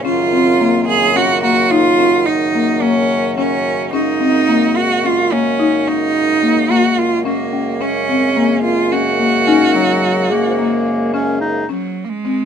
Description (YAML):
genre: contemporary instrumental, chamber music in an uneven meter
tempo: 108 BPM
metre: 7/4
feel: straight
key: unclear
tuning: A4 = 440 Hz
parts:
  - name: clear cello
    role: melody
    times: 0.0-12.4 s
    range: Gb3 to Ab4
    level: -16 LUFS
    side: right 4 dB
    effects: none
  - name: pedal harmonium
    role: sustained chords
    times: 0.0-11.7 s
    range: Gb2 to Ab4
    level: -21 LUFS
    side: equal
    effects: none
  - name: buzzing marimba with medium mallets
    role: arpeggios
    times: 0.0-12.4 s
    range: Bb3 to Eb4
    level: -18 LUFS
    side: left 4 dB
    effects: none
  - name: celesta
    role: texture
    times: 3.9-12.1 s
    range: Db4 to C5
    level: -25 LUFS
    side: left 4 dB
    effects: none
  - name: clear clarinet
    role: second line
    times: 9.5-11.7 s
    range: Gb3 to Eb4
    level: -19 LUFS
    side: left 2 dB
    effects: none
room: light reverb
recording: close, detailed microphones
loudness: -12 LUFS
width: side -8 dB against mid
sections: 0.0-11.7 A section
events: none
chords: 0.1 Ebm9/Gb; 3.9 Ab9sus4/Gb; 11.7 Gb5